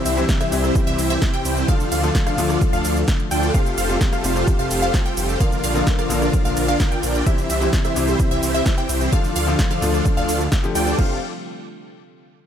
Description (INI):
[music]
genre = EDM, festival progressive house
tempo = 129 BPM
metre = 4/4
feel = straight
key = F major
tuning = A4 = 441 Hz
[part]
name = bright baby grand piano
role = accompaniment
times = 0.0-11.2 s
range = C3 to G4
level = -26 LUFS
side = left 4 dB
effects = sidechain pumping, ping-pong delay
[part]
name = lush unison pad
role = sustained chords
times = 0.0-11.2 s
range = C3 to F4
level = -30 LUFS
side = equal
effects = chorus, sidechain pumping
[part]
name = wide unison pluck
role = arpeggios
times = 0.0-11.2 s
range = E5 to G5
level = -28 LUFS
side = equal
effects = sidechain pumping, ping-pong delay
[part]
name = supersaw chords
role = riff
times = 0.0-11.2 s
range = C4 to G5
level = -24 LUFS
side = right 1 dB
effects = ensemble chorus, cassette tape, sidechain pumping, ping-pong delay
[part]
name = wide detuned saw bass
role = bass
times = 0.1-11.2 s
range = F1 to D2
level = -23 LUFS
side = equal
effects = chorus, sidechain pumping
[part]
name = big-room dance drum kit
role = drums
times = 0.1-11.1 s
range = cabasa, crash cymbal, hi-hat, ride cymbal, rim click, snare drum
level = -28 LUFS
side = right 1 dB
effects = none
[part]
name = electronic kick drum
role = drums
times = 0.3-11.1 s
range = none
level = -19 LUFS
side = equal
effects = none
[sound]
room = digital ambience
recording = none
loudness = -17 LUFS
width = side -9 dB against mid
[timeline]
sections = 0.0-11.0 A section; 11.0-12.5 B section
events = drop 0.0-11.0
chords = 0.0 C; 1.7 Dm; 3.5 Fadd9; 5.4 Bb; 7.3 C; 9.1 Dm; 11.0 Fadd9